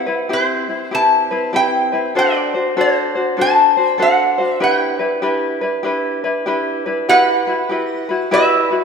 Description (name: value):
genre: Hawaiian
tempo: 97 BPM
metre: 4/4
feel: swing 64% on 8ths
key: G major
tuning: A4 = 439 Hz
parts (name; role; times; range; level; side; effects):
- lap resonator guitar; melody; 0.0-8.8 s; B4 to A5; -16 LUFS; equal; none
- tenor ukulele; accompaniment; 0.0-8.8 s; C4 to C5; -18 LUFS; left 1 dB; none
room: wet scoring stage reverb, RT60 2.0 s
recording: none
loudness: -14 LUFS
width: side -6 dB against mid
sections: 0.0-7.1 A section; 7.1-8.8 B section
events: none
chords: 0.0 Cmaj7; 2.1 D7; 4.6 G6; 7.1 Emadd9